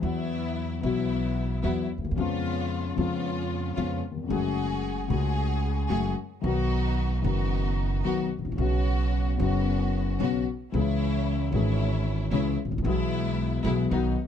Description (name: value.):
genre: tango.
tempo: 112 BPM.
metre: 4/4.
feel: rubato.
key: E major.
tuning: A4 = 445 Hz.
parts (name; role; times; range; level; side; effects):
dark concert grand piano; accompaniment; 0.0-14.1 s; F#1 to G#4; -28 LUFS; left 6 dB; none.
rich studio string section; stabs; 0.0-14.1 s; F#3 to G#4; -34 LUFS; right 2 dB; none.
upright bass; bass; 0.0-14.1 s; F#1 to E#2; -29 LUFS; right 2 dB; none.
room: little or no reverb.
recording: close, detailed microphones.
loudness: -25 LUFS.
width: side -8 dB against mid.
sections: 0.0-14.3 A section.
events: none.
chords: 0.0 Esus2; 2.2 C#7/E#; 4.3 F#madd9; 6.4 B; 8.6 Bsus2; 10.7 C#m; 12.8 E/B.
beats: | 0.02 0.56 1.10 1.64 | 2.17 2.71 3.24 3.77 | 4.30 4.83 5.37 5.90 | 6.43 6.97 7.50 8.04 | 8.58 9.12 9.66 10.20 | 10.73 11.26 11.79 12.32 | 12.85 13.38 13.91.